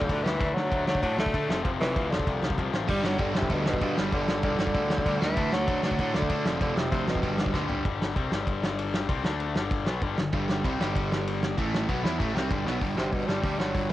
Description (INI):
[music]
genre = punk rock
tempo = 194 BPM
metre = 4/4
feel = straight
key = G major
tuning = A4 = 440 Hz
[part]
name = clear tenor saxophone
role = melody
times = 0.0-7.7, 13.0-13.9 s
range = B2 to A3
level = -30 LUFS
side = equal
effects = cassette tape
[part]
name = distorted electric guitar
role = riff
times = 0.0-13.9 s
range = F2 to E4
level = -31 LUFS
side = left 6 dB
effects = overdrive, cassette tape
[part]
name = growling picked electric bass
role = bass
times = 0.0-13.9 s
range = E1 to D3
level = -33 LUFS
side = equal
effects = overdrive, tube saturation
[part]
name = loose indie drum kit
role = drums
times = 0.0-13.9 s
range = crash cymbal, hi-hat, kick drum, ride cymbal, snare drum, toms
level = -29 LUFS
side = equal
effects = cassette tape
[part]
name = crunchy overdriven guitar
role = riff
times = 2.9-7.8, 10.3-13.9 s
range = F2 to E4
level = -31 LUFS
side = right 6 dB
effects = cassette tape
[sound]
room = studio reverb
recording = home recording on cassette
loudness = -24 LUFS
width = side -14 dB against mid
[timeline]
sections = 0.0-7.9 A section; 7.9-12.8 B section; 12.8-13.9 C section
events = drum fill 7.5-7.9, 12.7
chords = 0.4 D; 1.5 F5; 2.9 G5; 5.4 D; 6.5 F5; 7.2 G; 7.9 G5; 9.2 D5; 9.6 G; 11.6 A5; 11.9 G; 12.8 G5